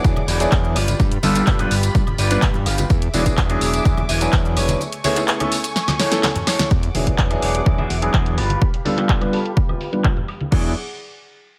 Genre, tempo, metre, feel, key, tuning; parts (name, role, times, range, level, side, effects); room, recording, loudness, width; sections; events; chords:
filtered disco house; 126 BPM; 4/4; straight; E mixolydian; A4 = 440 Hz
warm concert grand piano; accompaniment; 0.0-10.7 s; F#3 to B4; -25 LUFS; equal; phaser, sidechain pumping, low-pass filter
muted studio string section; sustained chords; 0.0-10.7 s; A3 to D6; -32 LUFS; equal; vintage 12-bit sampler grit, sidechain pumping, low-pass filter
fat analog bass; bass; 0.0-10.7 s; E1 to G2; -24 LUFS; equal; tube saturation, sidechain pumping, low-pass filter
electronic kick drum; drums; 0.0-10.6 s; -20 LUFS; equal; overdrive, studio reverb
house drum kit; drums; 0.0-10.6 s; crash cymbal, handclaps, hi-hat, snare drum, tambourine, woodblock; -27 LUFS; equal; sidechain pumping on hats, low-pass filter on hats, studio reverb, sidechain pumping on perc, low-pass filter on perc, low-pass filter on snare, sidechain pumping on cymbals, low-pass filter on cymbals
maracas and congas; percussion; 0.0-10.5 s; -31 LUFS; equal; sidechain pumping on perc, low-pass filter on perc
semi-hollow electric guitar; riff; 0.3-10.7 s; E4 to F5; -28 LUFS; equal; sidechain pumping, low-pass filter
light reverb; -19 LUFS; mono
0.0-6.7 A section; 6.7-10.5 B section; 10.5-11.6 C section
drop 0.0-6.7; drum fill 5.8-6.7; filter sweep on drum 6.7-10.5; filter sweep 6.7-10.5
0.0 E9; 0.8 G7; 2.9 E7; 4.8 Amaj7; 6.7 E9; 8.4 G7; 10.5 E9